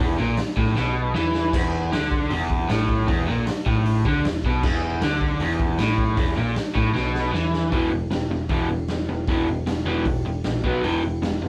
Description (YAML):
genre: garage rock duo or trio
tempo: 155 BPM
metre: 4/4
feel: straight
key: unclear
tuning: A4 = 440 Hz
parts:
  - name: crunchy overdriven guitar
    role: riff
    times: 0.0-11.5 s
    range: E2 to B3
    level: -26 LUFS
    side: equal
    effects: none
  - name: hollow-body short-scale picked electric bass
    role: bass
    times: 0.0-11.5 s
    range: E1 to E2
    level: -30 LUFS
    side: equal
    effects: none
  - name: raw garage drum kit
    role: drums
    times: 0.4-11.3 s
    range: crash cymbal, hi-hat, kick drum, snare drum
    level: -28 LUFS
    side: equal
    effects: none
room: moderate studio ambience, RT60 0.5 s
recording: band playing live in one room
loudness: -23 LUFS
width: mono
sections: 0.0-7.7 A section; 7.7-11.5 B section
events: drum fill 0.8-1.5, 6.9-7.7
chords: 0.0 E5; 10.6 B5; 10.8 E5